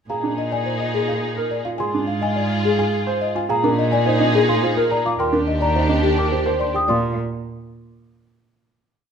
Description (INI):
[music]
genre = classical, minimalist pattern music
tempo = 106 BPM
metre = 3/4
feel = straight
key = Bb mixolydian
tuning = A4 = 439 Hz
[part]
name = buzzing marimba with soft mallets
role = melody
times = 0.1-7.1 s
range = G4 to Ab5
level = -23 LUFS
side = left 6 dB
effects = none
[part]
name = rich symphonic violin section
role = sustained chords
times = 0.1-6.7 s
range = D4 to Ab4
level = -26 LUFS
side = left 1 dB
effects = none
[part]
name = warm baby grand piano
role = arpeggios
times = 0.1-7.2 s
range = D4 to C5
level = -23 LUFS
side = right 4 dB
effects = none
[part]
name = worn celesta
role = arpeggios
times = 0.1-7.2 s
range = Ab5 to Eb6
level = -25 LUFS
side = left 3 dB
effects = none
[part]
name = rich cello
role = bass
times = 0.1-7.2 s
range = Eb2 to Bb2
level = -23 LUFS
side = right 3 dB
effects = none
[sound]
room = moderate large studio reverb, RT60 1.3 s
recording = none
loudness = -17 LUFS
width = side -7 dB against mid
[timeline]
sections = 0.1-6.9 A section; 6.9-8.6 final chord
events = none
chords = 0.1 Bb7sus4; 1.8 Ab6; 3.5 Bb9sus4; 5.2 Ebmaj7; 6.9 Bb5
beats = | 0.10 0.67 1.23 | 1.80 2.36 2.93 | 3.50 4.06 4.63 | 5.19 5.76 6.33 | 6.89